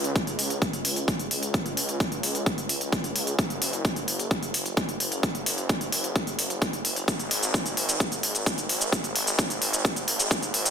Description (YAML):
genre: EDM, festival progressive house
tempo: 130 BPM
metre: 4/4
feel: straight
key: unclear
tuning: A4 = 441 Hz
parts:
  - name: wide detuned saw bass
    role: bass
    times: 0.0-10.7 s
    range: F#1 to C#2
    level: -32 LUFS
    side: equal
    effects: chorus, sidechain pumping, high-pass filter
  - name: electronic hi-hat and shaker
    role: drums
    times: 0.0-10.7 s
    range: none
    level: -27 LUFS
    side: equal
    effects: high-pass filter on hats, high-pass filter on perc, high-pass filter on room
  - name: electronic kick drum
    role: drums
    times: 0.2-10.4 s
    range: none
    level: -27 LUFS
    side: equal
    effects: high-pass filter on kick, high-pass filter on room
room: little or no reverb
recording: dense, heavily limited modern master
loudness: -24 LUFS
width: side -7 dB against mid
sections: 0.0-10.7 A section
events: build-up 0.0-10.7; drum fill 7.1-10.7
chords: none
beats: 0.16 0.62 1.08 | 1.54 2.00 2.46 2.92 | 3.39 3.85 4.31 4.77 | 5.23 5.70 6.16 6.62 | 7.08 7.54 8.00 8.46 | 8.93 9.39 9.85 10.31